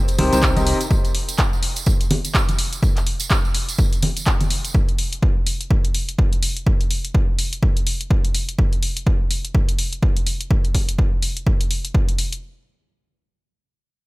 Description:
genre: piano house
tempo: 125 BPM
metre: 4/4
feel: swing 59% on 16ths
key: unclear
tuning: A4 = 440 Hz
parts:
  - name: downlifter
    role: sound effects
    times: 0.0-0.9 s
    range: none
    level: barely audible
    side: none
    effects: none
  - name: punchy analog drum machine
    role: drums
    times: 0.1-12.4 s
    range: handclaps, hi-hat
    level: -24 LUFS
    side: equal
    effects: none
  - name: tambourine and congas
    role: percussion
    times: 0.1-4.7 s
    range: none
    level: -26 LUFS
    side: right 1 dB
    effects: none
  - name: bright upright piano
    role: riff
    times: 0.2-0.8 s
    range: C3 to Eb5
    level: -22 LUFS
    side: left 1 dB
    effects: sidechain pumping, low-pass filter, dub echo
  - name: solid FM bass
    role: bass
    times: 0.2-0.7 s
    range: C2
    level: -21 LUFS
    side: equal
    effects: sidechain pumping
  - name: electronic kick drum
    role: drums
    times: 0.4-12.1 s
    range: none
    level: -18 LUFS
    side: equal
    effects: none
room: little or no reverb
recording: none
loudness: -17 LUFS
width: side -22 dB against mid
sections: 0.0-12.4 A section; 12.4-14.1 B section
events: none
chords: 0.0 Cm7; 0.9 N.C.

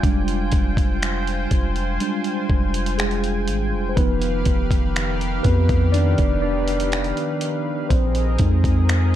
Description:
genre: contemporary R&B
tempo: 61 BPM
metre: 4/4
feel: straight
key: F dorian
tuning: A4 = 437 Hz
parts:
  - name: mellow tine electric piano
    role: accompaniment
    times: 0.0-9.2 s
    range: F3 to D5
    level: -24 LUFS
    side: equal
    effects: fast stereo tremolo
  - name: lush unison pad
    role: sustained chords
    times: 0.0-9.2 s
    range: Eb3 to Ab5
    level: -28 LUFS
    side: equal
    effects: chorus, sidechain pumping
  - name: long sustained 808-style bass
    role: bass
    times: 0.0-9.2 s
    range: F1 to F2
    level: -22 LUFS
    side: equal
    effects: none
  - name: dusty soul sampler-style drum kit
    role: drums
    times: 0.0-9.1 s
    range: finger snaps, hi-hat, kick drum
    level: -22 LUFS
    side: equal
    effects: none
room: digital ambience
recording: dark, warm production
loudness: -18 LUFS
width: side -12 dB against mid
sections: 0.0-9.2 A section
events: tine electric piano solo 0.0-9.2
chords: 0.0 Fm69; 4.0 G7b13/F; 7.9 Bb9sus4

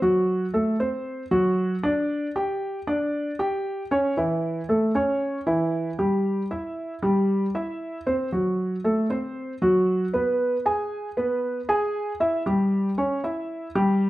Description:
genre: latin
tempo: 116 BPM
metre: 4/4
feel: straight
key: unclear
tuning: A4 = 440 Hz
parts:
  - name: dark grand piano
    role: solo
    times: 0.0-14.1 s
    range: E3 to G#5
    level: -22 LUFS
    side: equal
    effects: none
room: moderate large studio reverb, RT60 0.8 s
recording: none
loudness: -22 LUFS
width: side -16 dB against mid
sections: 0.0-14.1 A section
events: none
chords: 0.0 D7; 2.1 G5; 4.2 A; 6.2 C; 8.3 F#dim; 10.4 E; 12.5 A7 (rootless)

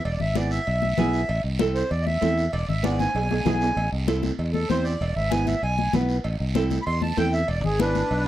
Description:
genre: latin, cumbia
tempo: 194 BPM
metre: 4/4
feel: straight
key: A harmonic minor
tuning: A4 = 440 Hz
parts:
  - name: accordion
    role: melody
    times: 0.0-8.3 s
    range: D4 to C6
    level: -26 LUFS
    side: right 1 dB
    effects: none
  - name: congas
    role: percussion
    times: 0.0-8.3 s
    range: none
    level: -29 LUFS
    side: left 10 dB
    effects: none
  - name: fingered electric bass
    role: bass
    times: 0.1-8.3 s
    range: E1 to E2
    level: -26 LUFS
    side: equal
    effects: none
  - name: cowbell and timbales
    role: percussion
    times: 0.1-8.3 s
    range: none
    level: -35 LUFS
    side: right 4 dB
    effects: none
  - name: guiro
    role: percussion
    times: 0.1-8.3 s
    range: none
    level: -39 LUFS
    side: right 4 dB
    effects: none
  - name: nylon-string guitar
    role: accompaniment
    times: 0.4-8.0 s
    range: B3 to C5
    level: -25 LUFS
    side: right 3 dB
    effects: none
room: little or no reverb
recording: dry, close 1970s-style studio recording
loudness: -21 LUFS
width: side -13 dB against mid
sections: 0.0-8.3 A section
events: accordion solo 0.0-8.3; drum fill 2.8-3.8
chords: 0.1 E; 1.3 Am; 2.5 E; 3.8 Am; 5.0 E; 6.2 Am; 7.5 E7

